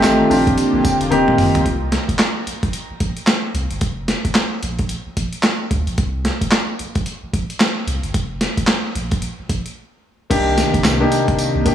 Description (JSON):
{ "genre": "R&B, new jack swing", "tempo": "111 BPM", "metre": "4/4", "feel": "swing 60% on 16ths", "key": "C dorian", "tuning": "A4 = 442 Hz", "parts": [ { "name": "warm grand piano", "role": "accompaniment", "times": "0.0-1.7, 10.3-11.7 s", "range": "A3 to Bb5", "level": "-17 LUFS", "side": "left 1 dB", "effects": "shimmer reverb" }, { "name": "chorused pulse-width pad", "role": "sustained chords", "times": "0.0-1.7, 10.3-11.7 s", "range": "C3 to G4", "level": "-22 LUFS", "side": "right 2 dB", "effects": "none" }, { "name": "round analog bass", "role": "bass", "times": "0.0-11.6 s", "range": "F1 to D2", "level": "-24 LUFS", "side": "equal", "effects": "none" }, { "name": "boom bap sampler-style drum kit", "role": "drums", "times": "0.0-11.7 s", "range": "crash cymbal, handclaps, hi-hat, kick drum, snare drum, tambourine, toms", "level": "-18 LUFS", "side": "equal", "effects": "none" } ], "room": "light reverb, digital ambience", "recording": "small room ambience", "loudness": "-16 LUFS", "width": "side -10 dB against mid", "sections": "0.0-1.7 A section; 1.7-10.3 B section; 10.3-11.7 A section", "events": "grand piano fill 0.6-1.7; drum fill 1.1-1.7; break 9.8-10.3", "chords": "0.3 Bb6; 1.1 F7sus4; 1.7 C5; 3.8 N.C.; 6.0 C5; 8.1 N.C.; 10.3 Cm7", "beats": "0.03 0.57 1.11 | 1.66 2.20 2.74 3.28 | 3.82 4.36 4.90 5.44 | 5.98 6.52 7.06 7.60 | 8.14 8.68 9.22 9.76 | 10.30 10.84 11.38" }